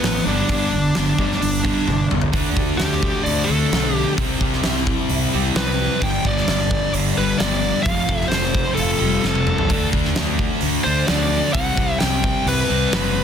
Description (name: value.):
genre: quiet-loud alternative rock.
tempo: 130 BPM.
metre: 4/4.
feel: straight.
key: unclear.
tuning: A4 = 440 Hz.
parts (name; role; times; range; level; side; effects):
high-gain lead guitar; melody; 0.0-13.2 s; B3 to G5; -23 LUFS; left 1 dB; distortion.
twelve-string electric guitar; arpeggios; 0.0-9.7 s; G2 to A4; -27 LUFS; left 1 dB; ensemble chorus.
distorted electric guitar; riff; 0.0-13.2 s; F2 to D4; -25 LUFS; right 12 dB; distortion.
fuzz guitar; riff; 0.0-13.2 s; F2 to D4; -25 LUFS; left 11 dB; distortion.
fuzz fingered electric bass; bass; 0.0-13.2 s; F1 to D2; -25 LUFS; equal; overdrive.
huge arena drum kit; drums; 0.0-13.0 s; hi-hat, kick drum, snare drum, toms; -22 LUFS; right 1 dB; none.
room: light reverb.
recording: dense, heavily limited modern master.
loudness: -17 LUFS.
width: side -8 dB against mid.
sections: 0.0-2.3 A section; 2.3-13.2 B section.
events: drum fill 1.9-2.3, 9.2-9.7; lead electric guitar solo 2.3-13.2.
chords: 0.3 G; 2.3 D7sus4; 4.2 Cmaj7; 6.0 G; 7.9 Fadd9; 9.7 D5; 11.5 C5.